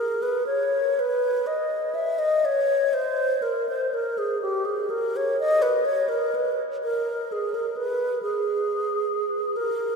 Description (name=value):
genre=classical, free, expressive piece for unaccompanied alto flute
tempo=58-68 BPM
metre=3/4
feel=rubato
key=G# minor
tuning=A4 = 439 Hz
part: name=alto flute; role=solo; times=0.0-10.0 s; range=G4 to E5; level=-22 LUFS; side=equal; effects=none
room=wet cathedral reverb, RT60 5.7 s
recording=recorded in a church or concert hall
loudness=-22 LUFS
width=side -4 dB against mid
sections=0.0-10.0 A section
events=none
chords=none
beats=0.48 1.46 | 2.43 3.42 4.40 | 5.37 6.32 7.28 | 8.20 9.12